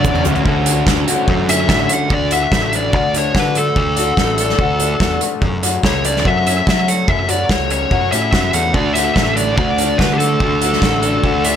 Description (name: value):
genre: indie rock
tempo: 144 BPM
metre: 4/4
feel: straight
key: D major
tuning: A4 = 437 Hz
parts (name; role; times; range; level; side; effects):
- fuzz lead guitar; melody; 0.0-11.6 s; G4 to F#5; -18 LUFS; equal; distortion, slapback echo
- mellow tonewheel organ; sustained chords; 0.0-0.5 s; A4 to C#6; -32 LUFS; right 1 dB; none
- electric guitar through a small old amp; riff; 0.0-11.6 s; F#2 to F#4; -20 LUFS; left 7 dB; analog chorus
- thick fuzz guitar; riff; 0.0-2.1, 8.7-11.6 s; D3 to A4; -22 LUFS; right 8 dB; distortion, wide subtle chorus, slapback echo
- fuzz picked electric bass; bass; 0.0-11.6 s; A1 to F#3; -20 LUFS; equal; overdrive
- loose indie drum kit; drums; 0.0-11.5 s; hi-hat, kick drum, snare drum, toms; -18 LUFS; right 1 dB; none
room: light reverb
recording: none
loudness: -13 LUFS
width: side -9 dB against mid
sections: 0.5-2.1 A section; 2.1-11.6 B section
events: drum fill 0.0-0.5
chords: 0.5 Dmaj7; 2.1 D; 5.4 F#m7; 8.7 D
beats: 0.04 | 0.46 0.87 1.28 1.69 | 2.10 2.52 2.93 3.35 | 3.76 4.17 4.59 5.00 | 5.42 5.83 6.25 6.67 | 7.08 7.50 7.91 8.33 | 8.74 9.16 9.57 9.99 | 10.40 10.82 11.24